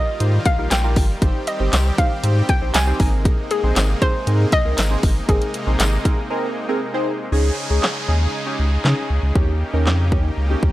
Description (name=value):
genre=dance-pop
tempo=118 BPM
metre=4/4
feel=straight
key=Ab major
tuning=A4 = 440 Hz
part: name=hollow square pluck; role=melody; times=0.0-6.8 s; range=Ab4 to Ab5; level=-24 LUFS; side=left 1 dB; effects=chorus
part: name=warm analog keys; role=accompaniment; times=0.0-10.7 s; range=C4 to C5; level=-26 LUFS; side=equal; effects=chorus, phaser, sidechain pumping
part: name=supersaw chords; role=sustained chords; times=0.0-10.7 s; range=C3 to Ab4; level=-28 LUFS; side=equal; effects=sidechain pumping
part: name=saturated sub bass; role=bass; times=0.2-10.7 s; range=G1 to Db3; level=-18 LUFS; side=equal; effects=sidechain pumping
part: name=house drum kit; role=drums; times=0.2-10.7 s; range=handclaps, hi-hat, kick drum, snare drum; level=-19 LUFS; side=equal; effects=none
part: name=tambourine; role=percussion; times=0.7-5.9 s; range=none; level=-33 LUFS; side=left 5 dB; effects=none
part: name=downlifter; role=sound effects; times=7.3-10.7 s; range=none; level=-31 LUFS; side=right 1 dB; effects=none
room=digital ambience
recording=dry, gritty hardware recording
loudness=-16 LUFS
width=side -16 dB against mid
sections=0.0-7.3 A section; 7.3-10.7 B section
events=break 6.3-7.3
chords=0.0 Ebadd9; 1.2 Abadd9; 7.3 Dbsus2; 9.4 Eb7